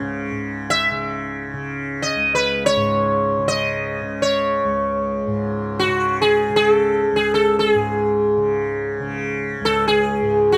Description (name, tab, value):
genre	indian classical, Hindustani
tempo	free time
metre	none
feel	none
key	C# raga darbari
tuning	A4 = 441 Hz
part	tanpura	drone	0.0-10.6 s	C#2 to C#3	-27 LUFS	equal	none
part	sitar	melody	0.7-10.6 s	F#4 to E5	-20 LUFS	equal	none
room	little or no reverb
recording	close, detailed microphones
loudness	-20 LUFS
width	mono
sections	0.3-10.6 A section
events	none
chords	none